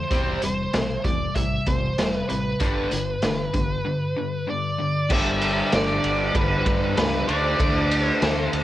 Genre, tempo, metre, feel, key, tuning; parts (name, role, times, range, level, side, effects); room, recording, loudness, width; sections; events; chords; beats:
hard rock; 96 BPM; 4/4; straight; A4 = 440 Hz
high-gain lead guitar; melody; 0.0-8.5 s; B4 to E5; -27 LUFS; right 1 dB; distortion, cassette tape
cranked stack guitar; riff; 0.0-8.6 s; G2 to D4; -27 LUFS; left 5 dB; overdrive, cassette tape
cranked stack guitar; riff; 0.0-8.6 s; G2 to D4; -31 LUFS; right 8 dB; overdrive, cassette tape
growling fingered electric bass; bass; 0.0-8.6 s; E1 to G2; -30 LUFS; equal; overdrive
raw garage drum kit; drums; 0.1-8.6 s; crash cymbal, hi-hat, kick drum, ride cymbal, snare drum; -24 LUFS; equal; cassette tape
little or no reverb; home recording on cassette; -20 LUFS; side -14 dB against mid
0.0-5.1 A section; 5.1-8.6 B section
0.1 C/E; 2.6 G; 7.3 D5
| 0.11 0.73 1.36 1.99 | 2.61 3.23 3.86 4.48 | 5.11 5.73 6.35 6.97 | 7.60 8.22